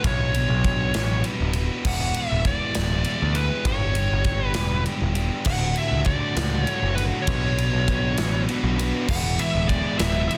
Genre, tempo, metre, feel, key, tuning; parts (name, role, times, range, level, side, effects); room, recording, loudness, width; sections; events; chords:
quiet-loud alternative rock; 66 BPM (dotted quarters); 6/8; straight; A4 = 440 Hz
sludgy distorted guitar; riff; 0.0-10.4 s; D2 to B4; -31 LUFS; equal; overdrive
growling picked electric bass; bass; 0.0-10.3 s; D1 to D2; -27 LUFS; equal; overdrive
big rock drum kit; drums; 0.0-10.4 s; crash cymbal, kick drum, ride cymbal, snare drum; -29 LUFS; equal
smooth overdriven lead guitar; melody; 0.1-10.4 s; B4 to F#5; -30 LUFS; equal
sludgy distorted guitar; riff; 5.5-10.4 s; D2 to B4; -31 LUFS; equal; overdrive
light reverb, small room ambience; dense, heavily limited modern master; -23 LUFS; mono
0.0-10.4 A section
0.0 Bmadd9; 1.8 E7; 3.7 G; 5.5 D; 7.3 Bmadd9; 9.1 E7